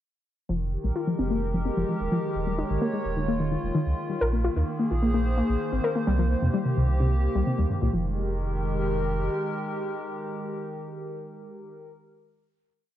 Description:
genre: IDM.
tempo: 129 BPM.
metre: 4/4.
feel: straight.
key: F minor.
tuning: A4 = 437 Hz.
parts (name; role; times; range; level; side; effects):
hollow soft pad; sustained chords; 0.5-11.9 s; Eb3 to Db5; -30 LUFS; right 1 dB; chorus.
warbly dusty pluck; arpeggios; 0.5-8.1 s; G2 to Bb4; -27 LUFS; left 2 dB; chorus, tape echo.
warm sub bass; bass; 0.5-9.3 s; Eb1 to F2; -26 LUFS; equal; none.
room: moderate echo chamber reverb, RT60 1.6 s, digital ambience.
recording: dark, warm production.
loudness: -24 LUFS.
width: side -12 dB against mid.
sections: 0.5-7.9 groove; 7.9-11.7 final chord.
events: none.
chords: 0.5 Fm11; 2.4 Eb9sus4; 4.2 Bb9sus4; 6.1 Cm7; 7.9 Fm11.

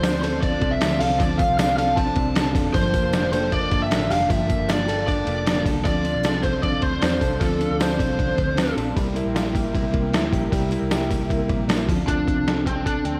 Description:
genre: jangly indie pop.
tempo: 154 BPM.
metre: 4/4.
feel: straight.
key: D minor.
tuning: A4 = 440 Hz.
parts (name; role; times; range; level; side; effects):
lead guitar through a small cranked amp; melody; 0.0-8.7, 12.1-13.2 s; C4 to A5; -27 LUFS; equal; overdrive.
mellow electric guitar; accompaniment; 0.0-13.2 s; G2 to Bb4; -30 LUFS; equal; tremolo.
lush unison pad; sustained chords; 0.0-12.1 s; Bb3 to C6; -38 LUFS; equal; chorus.
mellow electric guitar; arpeggios; 0.0-13.2 s; F3 to A4; -29 LUFS; equal; none.
vintage muted fingered electric bass; bass; 0.0-13.2 s; F1 to E2; -31 LUFS; equal; none.
boom bap sampler-style drum kit; drums; 0.0-13.1 s; hi-hat, kick drum, ride cymbal, snare drum; -27 LUFS; equal; gated reverb.
tambourine; percussion; 0.0-12.0 s; none; -47 LUFS; equal; none.
room: moderate studio reverb, RT60 0.6 s.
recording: cassette tape.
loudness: -22 LUFS.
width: mono.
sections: 0.0-5.9 A section; 5.9-12.1 B section; 12.1-13.2 C section.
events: none.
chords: 0.0 Dm7; 2.7 Gm9; 5.9 Dm7; 9.0 C7; 11.9 Dm7.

